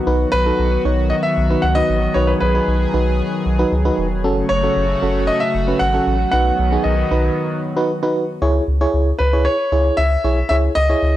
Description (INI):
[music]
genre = synth-pop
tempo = 115 BPM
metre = 4/4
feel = straight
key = unclear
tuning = A4 = 441 Hz
[part]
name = chorused pulse-width pad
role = sustained chords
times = 0.0-8.4 s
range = C#3 to G#4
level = -22 LUFS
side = left 1 dB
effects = none
[part]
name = FM electric piano with auto-pan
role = accompaniment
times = 0.1-11.2 s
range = C#4 to C#5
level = -21 LUFS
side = right 1 dB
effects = none
[part]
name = round analog bass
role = bass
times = 0.1-11.2 s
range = E1 to C#2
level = -19 LUFS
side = equal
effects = none
[part]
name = clear concert grand piano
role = melody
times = 0.3-11.2 s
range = B4 to F#5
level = -20 LUFS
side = equal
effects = tape echo
[sound]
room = light reverb, digital ambience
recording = dry, gritty hardware recording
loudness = -15 LUFS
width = side -13 dB against mid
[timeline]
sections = 0.1-8.4 A section; 8.4-11.2 B section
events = break 7.4-8.4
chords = 0.1 B; 4.2 F#m; 6.3 B; 8.4 C#m